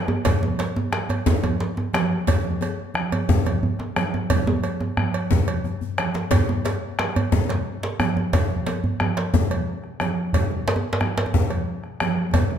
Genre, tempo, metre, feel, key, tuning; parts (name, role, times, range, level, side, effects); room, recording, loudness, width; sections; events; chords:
west african traditional, West African drum ensemble; 119 BPM (dotted quarters); 12/8; straight
congas; percussion; 0.1-12.6 s; -28 LUFS; right 4 dB
djembe; percussion; 0.1-12.5 s; -25 LUFS; right 2 dB
cowbell; percussion; 0.2-12.5 s; -31 LUFS; right 6 dB
djembe; percussion; 0.2-12.5 s; -26 LUFS; left 7 dB
bombo; percussion; 0.3-12.6 s; -25 LUFS; right 1 dB
wet recital hall reverb, RT60 1.5 s; -20 LUFS; side -8 dB against mid
0.0-12.6 A section
drum fill 5.6-6.3, 12.3